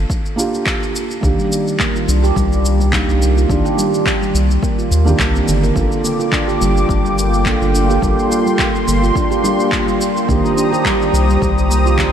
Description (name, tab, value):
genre	organic downtempo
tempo	106 BPM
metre	4/4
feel	swing 54% on 16ths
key	G minor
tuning	A4 = 440 Hz
part	felt-muted upright piano	accompaniment	0.0-12.1 s	Eb3 to A4	-21 LUFS	right 2 dB	sidechain pumping, analog delay
part	round analog bass	bass	0.0-12.1 s	G1 to Eb2	-15 LUFS	equal	sidechain pumping
part	electronic kick drum	drums	0.1-12.1 s	none	-22 LUFS	equal	overdrive
part	electronic shaker and handclaps	drums	0.1-12.1 s	none	-23 LUFS	left 1 dB	none
part	handpan	arpeggios	1.4-12.1 s	D3 to G4	-18 LUFS	equal	analog delay
part	warm analog pad	sustained chords	5.8-12.1 s	Bb3 to Eb6	-19 LUFS	equal	chorus, sidechain pumping
room	moderate cathedral reverb, RT60 6.2 s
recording	dreamy mix soaked in reverb, lossy compression artefacts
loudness	-13 LUFS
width	side -9 dB against mid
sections	0.0-12.1 A section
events	none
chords	0.0 Gm7; 1.2 Cm7; 5.8 Gm7; 10.3 Cm7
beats	0.10 0.67 | 1.23 1.80 2.36 2.93 | 3.50 4.06 4.63 5.20 | 5.76 6.33 6.89 7.46 | 8.03 8.59 9.16 9.72 | 10.29 10.86 11.42 11.99